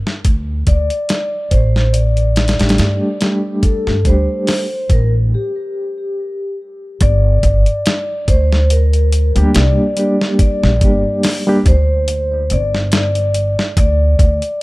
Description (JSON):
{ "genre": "trip hop", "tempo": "71 BPM", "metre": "4/4", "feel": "swing 55% on 16ths", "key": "G minor", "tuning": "A4 = 442 Hz", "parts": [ { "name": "dusty soul sampler-style drum kit", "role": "drums", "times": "0.1-14.6 s", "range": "hi-hat, kick drum, snare drum", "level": "-16 LUFS", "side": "equal", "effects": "none" }, { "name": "upright bass", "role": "bass", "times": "0.3-14.4 s", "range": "G1 to G2", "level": "-14 LUFS", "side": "equal", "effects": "tube saturation" }, { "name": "vibraphone with soft mallets", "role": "melody", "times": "0.7-14.6 s", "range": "G4 to D5", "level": "-20 LUFS", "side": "left 1 dB", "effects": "tape echo" }, { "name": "reed electric piano", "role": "accompaniment", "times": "2.6-11.7 s", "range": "G3 to G4", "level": "-18 LUFS", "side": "equal", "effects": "fast tremolo" } ], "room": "studio reverb", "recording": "dark, warm production", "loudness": "-12 LUFS", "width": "side -21 dB against mid", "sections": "0.0-7.0 A section; 7.0-14.6 B section", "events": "break 5.3-7.0", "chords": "0.2 Dsus4; 7.0 Gm; 13.8 N.C.", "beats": "| 0.25 1.09 1.94 2.79 | 3.63 4.47 5.32 6.17 | 7.01 7.86 8.70 9.54 | 10.39 11.24 12.08 12.93 | 13.77 14.62" }